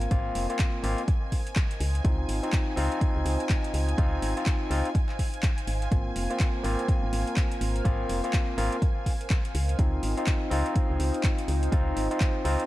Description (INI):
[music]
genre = deep house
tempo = 124 BPM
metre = 4/4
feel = swing 60% on 16ths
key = unclear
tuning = A4 = 440 Hz
[part]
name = warm analog pad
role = sustained chords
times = 0.0-12.7 s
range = Bb4 to F5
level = -40 LUFS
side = right 2 dB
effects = chorus, sidechain pumping
[part]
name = overdriven tine electric piano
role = stabs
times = 0.0-12.6 s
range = Bb3 to F4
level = -31 LUFS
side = left 1 dB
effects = sidechain pumping, tape echo
[part]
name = woody FM bass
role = bass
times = 0.0-12.6 s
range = F1 to Db2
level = -28 LUFS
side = equal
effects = sidechain pumping
[part]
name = deep house drum kit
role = drums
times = 0.0-12.7 s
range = handclaps, hi-hat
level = -36 LUFS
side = equal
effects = overdrive, small room ambience
[part]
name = clear symphonic violin section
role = texture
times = 0.0-12.7 s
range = Ab5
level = -42 LUFS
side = equal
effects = sidechain pumping
[part]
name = warbly tape-like pad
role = texture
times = 0.0-12.7 s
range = C4 to F5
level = -42 LUFS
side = left 3 dB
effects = none
[part]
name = electronic kick drum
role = drums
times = 0.1-12.3 s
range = none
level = -25 LUFS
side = equal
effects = overdrive, small room ambience
[sound]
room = little or no reverb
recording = dark, warm production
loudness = -24 LUFS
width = side -16 dB against mid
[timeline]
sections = 0.0-12.7 A section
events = none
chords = 0.0 Ab69; 1.8 Dbmaj9; 5.9 Ab69; 9.5 Dbmaj9